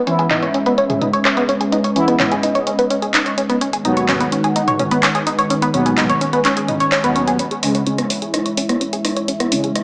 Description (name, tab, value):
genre	melodic techno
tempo	127 BPM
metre	4/4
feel	straight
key	C# minor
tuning	A4 = 440 Hz
part	dark analog pad	sustained chords	0.0-9.8 s	D#3 to G#5	-24 LUFS	equal	chorus
part	tight sequenced synth	arpeggios	0.1-9.8 s	B3 to C#5	-21 LUFS	equal	chorus, phaser, dub echo
part	analog synth brass	stabs	0.1-9.7 s	D#2 to E4	-24 LUFS	equal	chorus, cassette tape, dub echo
part	punchy analog drum machine	drums	0.1-9.8 s	handclaps, hi-hat, rim click, toms	-23 LUFS	equal	high-pass filter on hats, high-pass filter on snare, high-pass filter on toms, high-pass filter on room
part	swell	sound effects	6.6-7.4 s	none	-29 LUFS	equal	none
room	moderate lush hall reverb, RT60 1.8 s, digital ambience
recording	low-pass filter, small speaker sound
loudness	-17 LUFS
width	mono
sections	0.0-7.4 A section; 7.4-9.8 B section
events	filter sweep on synth arpeggio sound 0.0-7.4, 7.4-9.8; swell 6.6-7.4; build-up 7.4-9.8; filter sweep on analog polysynth 7.4-9.8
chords	0.0 E6; 3.6 B6/D#; 7.4 C#m